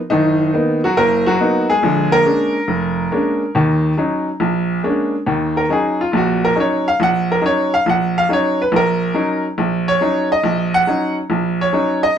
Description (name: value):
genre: solo jazz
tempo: 139 BPM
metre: 4/4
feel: swing 68% on 8ths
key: Eb minor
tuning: A4 = 440 Hz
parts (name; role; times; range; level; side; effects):
- bright upright piano; solo; 0.1-12.2 s; F1 to Gb5; -14 LUFS; equal; none
room: moderate club ambience, RT60 0.5 s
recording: none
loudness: -14 LUFS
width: side -8 dB against mid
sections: 0.0-5.3 A section; 5.3-12.2 B section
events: upright piano solo 5.3-12.2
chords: 0.0 Bmaj7; 1.8 Bb7#9; 3.5 Ebm7; 4.4 Bb7#9; 5.3 Ebm7